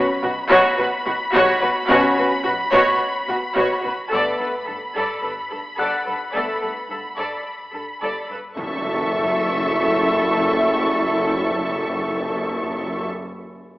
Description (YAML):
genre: cinematic, suspense film score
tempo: 54 BPM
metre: 4/4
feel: straight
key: F# phrygian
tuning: A4 = 441 Hz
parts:
  - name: muted symphonic violin section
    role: melody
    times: 0.0-13.0 s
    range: B5 to C#6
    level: -26 LUFS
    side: equal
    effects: none
  - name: muted studio violin section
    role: second line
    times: 0.0-13.0 s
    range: F#4 to E5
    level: -23 LUFS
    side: equal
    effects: none
  - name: muted symphonic viola section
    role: accompaniment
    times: 0.0-13.0 s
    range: F#4 to A4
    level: -23 LUFS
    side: equal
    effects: none
  - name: mellow French horn section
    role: sustained chords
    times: 0.0-13.0 s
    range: F#3 to E4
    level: -25 LUFS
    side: left 1 dB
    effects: none
  - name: muted symphonic cello section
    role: bass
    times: 0.0-13.1 s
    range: F#2 to B2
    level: -28 LUFS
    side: right 1 dB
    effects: none
  - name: muted symphonic double bass section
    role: bass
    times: 0.2-13.0 s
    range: F#1 to B1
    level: -30 LUFS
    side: right 1 dB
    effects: none
  - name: concert harp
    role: texture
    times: 5.8-9.7 s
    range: F#5 to F#6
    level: -28 LUFS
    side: left 3 dB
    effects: none
  - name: timpani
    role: percussion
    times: 8.6-13.1 s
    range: F#2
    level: -30 LUFS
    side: equal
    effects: none
  - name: impact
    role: sound effects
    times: 8.6-13.1 s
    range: none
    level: -37 LUFS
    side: equal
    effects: none
room: wet scoring stage reverb, RT60 1.7 s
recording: AM radio sound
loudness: -18 LUFS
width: side -17 dB against mid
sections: 0.0-8.6 A section; 8.6-13.0 B section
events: impact 8.6-13.0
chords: 0.0 Bsus2; 4.1 Gadd9; 8.6 F#m7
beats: 0.79 1.90 3.01 | 4.12 5.24 6.35 7.46 | 8.57 9.68 10.79 11.90